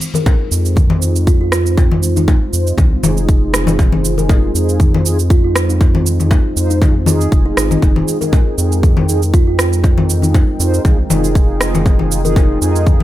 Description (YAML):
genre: afro house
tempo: 119 BPM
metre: 4/4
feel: swing 54% on 16ths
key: F minor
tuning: A4 = 438 Hz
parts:
  - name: dark analog pad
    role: sustained chords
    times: 0.0-13.0 s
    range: Ab3 to G5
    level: -24 LUFS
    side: equal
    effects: chorus, sidechain pumping
  - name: electronic shaker and rim click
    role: drums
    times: 0.0-13.0 s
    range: none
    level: -20 LUFS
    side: right 3 dB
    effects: studio reverb
  - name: kalimba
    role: melody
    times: 0.1-12.4 s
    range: Eb4 to Bb4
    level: -24 LUFS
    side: right 1 dB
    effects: digital delay
  - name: mellow synth brass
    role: stabs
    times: 0.1-13.0 s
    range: Eb4 to C5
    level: -22 LUFS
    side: right 2 dB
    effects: chorus, sidechain pumping, ping-pong delay
  - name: congas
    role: percussion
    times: 0.1-13.0 s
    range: none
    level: -19 LUFS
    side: left 3 dB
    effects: none
  - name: electronic kick drum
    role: drums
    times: 0.3-13.0 s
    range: none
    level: -12 LUFS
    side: equal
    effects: studio reverb
  - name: round analog bass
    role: bass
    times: 0.5-13.0 s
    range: F1 to F2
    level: -17 LUFS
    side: equal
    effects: tube saturation, sidechain pumping
room: little or no reverb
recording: none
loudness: -11 LUFS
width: side -14 dB against mid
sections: 0.0-13.0 A section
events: filter sweep on analog polysynth 0.0-13.0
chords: 0.0 Fm7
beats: 0.26 0.77 1.27 | 1.77 2.28 2.78 3.29 | 3.79 4.29 4.80 5.30 | 5.81 6.31 6.82 7.32 | 7.82 8.33 8.83 9.34 | 9.84 10.35 10.85 11.35 | 11.86 12.36 12.87